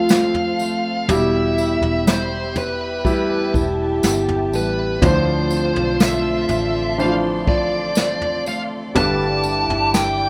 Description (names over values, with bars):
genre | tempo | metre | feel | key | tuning
pop ballad | 61 BPM | 4/4 | straight | unclear | A4 = 439 Hz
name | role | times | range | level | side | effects
bluesy overdriven lead guitar | melody | 0.0-10.3 s | B4 to A5 | -25 LUFS | equal | distortion
mellow French horn section | second line | 0.0-10.3 s | E4 to G4 | -28 LUFS | equal | none
warm concert grand piano | accompaniment | 0.0-10.3 s | G2 to C5 | -25 LUFS | equal | none
dark studio string section | sustained chords | 0.0-10.3 s | F4 to D6 | -34 LUFS | equal | none
fingerpicked steel-string acoustic guitar | arpeggios | 0.0-10.3 s | E2 to G4 | -28 LUFS | equal | none
vintage muted fingered electric bass | bass | 0.0-10.3 s | E1 to D2 | -29 LUFS | equal | none
vintage brush drum kit | drums | 0.1-10.2 s | kick drum, snare drum, toms | -22 LUFS | equal | none
tambourine | percussion | 0.1-10.2 s | none | -35 LUFS | equal | none
room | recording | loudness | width
wet small room reverb, RT60 0.5 s | rough home demo mix | -19 LUFS | mono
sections
0.0-10.3 A section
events
none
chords
0.0 F; 1.1 Em; 5.0 Dm7; 9.0 G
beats
0.10 | 1.08 2.07 3.05 4.03 | 5.02 6.00 6.99 7.97 | 8.95 9.94